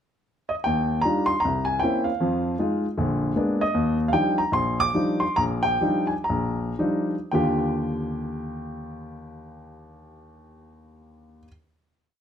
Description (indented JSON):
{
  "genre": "solo jazz",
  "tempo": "107-157 BPM",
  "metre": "4/4",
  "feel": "swing 63% on 8ths, rubato",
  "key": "Eb major",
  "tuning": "A4 = 440 Hz",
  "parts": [
    { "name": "warm baby grand piano", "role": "solo", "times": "0.5-11.5 s", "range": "Bb1 to D6", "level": "-22 LUFS", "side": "equal", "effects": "none" }
  ],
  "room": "wet club reverb, RT60 0.7 s",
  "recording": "none",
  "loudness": "-22 LUFS",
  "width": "side -8 dB against mid",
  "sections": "0.0-0.7 pickup bar; 0.7-7.3 A section; 7.3-11.7 final chord",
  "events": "slowing down 3.7-7.3",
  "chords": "0.0 N.C.; 0.7 Ebmaj9; 1.4 C7b9; 2.2 Fm7; 3.0 Bb7b9; 3.7 Ebmaj9"
}